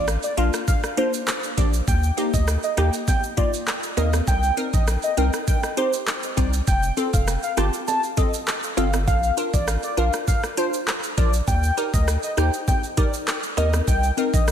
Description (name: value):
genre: dancehall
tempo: 100 BPM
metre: 4/4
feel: straight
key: unclear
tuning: A4 = 440 Hz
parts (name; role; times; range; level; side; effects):
- warm velvety synth lead; melody; 0.0-14.5 s; C5 to A5; -26 LUFS; equal; chorus, tape echo
- saturated sub bass; bass; 0.0-14.5 s; F1 to Eb2; -22 LUFS; equal; none
- island pop drum kit; drums; 0.1-14.5 s; handclaps, hi-hat, kick drum, rim click, shaker; -24 LUFS; equal; none
- maracas and timbales; percussion; 0.1-14.5 s; none; -34 LUFS; right 8 dB; none
- glassy wavetable pluck; accompaniment; 0.4-14.3 s; Bb3 to C5; -27 LUFS; left 1 dB; chorus
room: moderate lush hall reverb, RT60 2.6 s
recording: dreamy mix soaked in reverb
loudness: -19 LUFS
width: side -9 dB against mid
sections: 0.0-14.5 A section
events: none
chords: 0.0 Bb; 1.9 Eb; 4.3 Cm7; 6.7 F; 9.1 Bb; 11.5 Eb; 13.9 Cm7